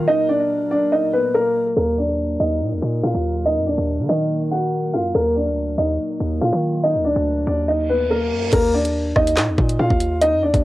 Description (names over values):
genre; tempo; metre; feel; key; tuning
hip hop, drill; 142 BPM; 4/4; half-time; Eb harmonic minor; A4 = 440 Hz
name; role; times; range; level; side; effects
dark concert grand piano; melody; 0.0-10.6 s; Bb3 to Gb5; -19 LUFS; equal; cassette tape
glassy FM pad; sustained chords; 0.0-8.5 s; Bb2 to Bb4; -30 LUFS; equal; ensemble chorus, built-in reverb, cassette tape
hard-hitting 808-style bass; bass; 0.0-10.6 s; D2 to Eb3; -23 LUFS; equal; none
reverse cymbal; sound effects; 7.9-8.5 s; none; -30 LUFS; right 6 dB; none
drill drum kit; drums; 8.5-10.6 s; crash cymbal, handclaps, hi-hat, kick drum, rim click, snare drum; -21 LUFS; equal; cassette tape
room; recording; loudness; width
little or no reverb; home recording on cassette, low-pass filter; -17 LUFS; side -16 dB against mid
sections
0.0-1.8 A section; 1.8-8.5 B section; 8.5-10.6 A section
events
break 0.1-1.8; filter sweep 1.8-8.5; reverse cymbal 7.9-8.5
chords
0.0 Ebm; 8.5 Eb5